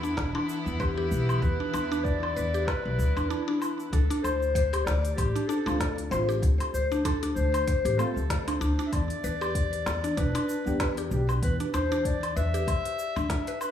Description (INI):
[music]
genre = organic downtempo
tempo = 96 BPM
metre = 4/4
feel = swing 56% on 16ths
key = unclear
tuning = A4 = 440 Hz
[part]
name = rich chamber string section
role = sustained chords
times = 0.0-3.9 s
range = E3 to E4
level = -36 LUFS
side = equal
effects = sidechain pumping
[part]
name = mallet-like synth pluck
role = arpeggios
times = 0.0-13.6 s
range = D4 to C5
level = -32 LUFS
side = equal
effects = chorus, vintage 12-bit sampler grit, tape echo
[part]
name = upright bass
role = bass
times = 0.0-13.3 s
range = E1 to E2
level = -29 LUFS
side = equal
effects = tube saturation, sidechain pumping
[part]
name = organic electronic drum kit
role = drums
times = 0.0-13.7 s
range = cabasa, hi-hat, snare drum, woodblock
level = -35 LUFS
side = left 2 dB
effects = none
[part]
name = electronic kick drum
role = drums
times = 0.2-13.4 s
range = none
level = -29 LUFS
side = equal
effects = none
[part]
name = mellow clarinet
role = melody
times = 0.8-13.7 s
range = E4 to E5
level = -32 LUFS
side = left 2 dB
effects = diffuse ambient delay
[part]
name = deep mellow chord stab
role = accompaniment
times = 5.7-13.0 s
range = B2 to G4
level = -35 LUFS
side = right 1 dB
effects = chorus, sidechain pumping, tape echo
[sound]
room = moderate plate reverb, RT60 1.5 s, digital ambience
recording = dreamy mix soaked in reverb, small room ambience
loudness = -25 LUFS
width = side -10 dB against mid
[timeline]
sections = 0.0-3.9 A section; 3.9-13.7 B section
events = break 3.3-3.9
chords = 0.0 Em7; 3.9 Dm7; 8.9 Em7